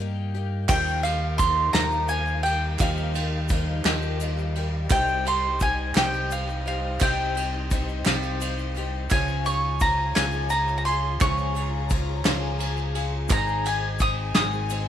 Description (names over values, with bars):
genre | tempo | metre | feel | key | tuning
indie folk with a building arrangement | 57 BPM (dotted quarters) | 6/8 | straight | unclear | A4 = 440 Hz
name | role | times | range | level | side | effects
picked twelve-string acoustic guitar | accompaniment | 0.0-14.9 s | Ab2 to Ab4 | -33 LUFS | left 14 dB | none
fingered electric bass | bass | 0.0-14.9 s | Ab1 to G2 | -28 LUFS | equal | none
soft brush drum kit | drums | 0.3-14.9 s | crash cymbal, hi-hat, kick drum, ride cymbal, snare drum | -27 LUFS | equal | none
mandolin | melody | 0.7-14.8 s | F5 to Eb6 | -25 LUFS | right 1 dB | none
clear upright piano | accompaniment | 0.7-14.9 s | Ab1 to G5 | -38 LUFS | right 14 dB | none
rich chamber string section | sustained chords | 0.7-14.9 s | G3 to Bb5 | -38 LUFS | left 1 dB | none
egg shaker | percussion | 0.7-14.9 s | none | -42 LUFS | left 16 dB | none
group handclap | percussion | 0.7-14.5 s | none | -37 LUFS | right 12 dB | none
room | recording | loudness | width
small room ambience | 1960s-style stereo with parts hard left and right | -22 LUFS | side -10 dB against mid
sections
0.7-14.9 A section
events
upright piano fill 3.9-4.9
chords
0.0 Cm7 (rootless); 0.7 Ebadd9; 4.9 Cm; 9.1 Db; 13.3 Ab